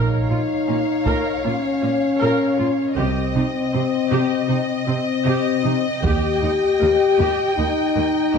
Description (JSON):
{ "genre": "cinematic, epic orchestral film score", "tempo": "78 BPM", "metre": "4/4", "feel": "straight", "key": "unclear", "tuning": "A4 = 438 Hz", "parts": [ { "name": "warm symphonic violin section", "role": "melody", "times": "0.0-8.4 s", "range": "Eb5 to G5", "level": "-30 LUFS", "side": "left 1 dB", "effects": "none" }, { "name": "warm symphonic violin section", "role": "second line", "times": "0.0-8.4 s", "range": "Db5 to Eb5", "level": "-28 LUFS", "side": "left 2 dB", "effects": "none" }, { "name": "warm symphonic viola section", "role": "accompaniment", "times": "0.0-8.4 s", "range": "Bb3 to Bb4", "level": "-28 LUFS", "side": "right 2 dB", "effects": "none" }, { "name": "mellow French horn section", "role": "sustained chords", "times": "0.0-8.4 s", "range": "C4 to G4", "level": "-20 LUFS", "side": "left 4 dB", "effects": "none" }, { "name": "rich symphonic double bass section", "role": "bass", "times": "0.0-6.4 s", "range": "Bb1 to Eb2", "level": "-24 LUFS", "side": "right 4 dB", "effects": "none" }, { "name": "warm symphonic cello section", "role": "bass", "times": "0.3-8.4 s", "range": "Eb2 to C3", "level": "-25 LUFS", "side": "right 4 dB", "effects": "none" }, { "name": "taiko ensemble", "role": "drums", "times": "1.1-1.4, 6.0-7.5 s", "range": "none", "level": "-28 LUFS", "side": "equal", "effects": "none" } ], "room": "moderate concert hall reverb, RT60 1.9 s", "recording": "dark, warm production, nothing above 10.3 kHz", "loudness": "-17 LUFS", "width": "side -6 dB against mid", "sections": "0.0-8.4 A section", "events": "none", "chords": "0.0 Bbm; 3.0 Cm; 6.0 Eb" }